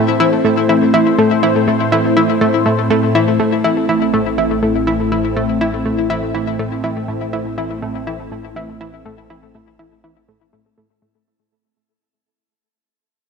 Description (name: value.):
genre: ambient, sequencer-driven space music.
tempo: 122 BPM.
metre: 4/4.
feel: straight.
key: A minor.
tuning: A4 = 440 Hz.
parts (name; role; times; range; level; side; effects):
phased analog pad; sustained chords; 0.0-11.2 s; A2 to C5; -17 LUFS; equal; phaser, chorus, shimmer reverb.
analog pluck; riff; 0.0-11.2 s; A3 to E4; -17 LUFS; left 1 dB; chorus, ping-pong delay, shimmer reverb.
analog drone; bass; 4.1-11.2 s; A1; -28 LUFS; right 1 dB; chorus, tube saturation.
room: wet plate reverb, RT60 2.8 s.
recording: none.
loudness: -13 LUFS.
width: side -5 dB against mid.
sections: 0.0-3.4 A section; 3.4-11.3 B section.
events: fade-out on synth drone 3.4-11.3; fade-out 3.4-11.3.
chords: 0.0 Am.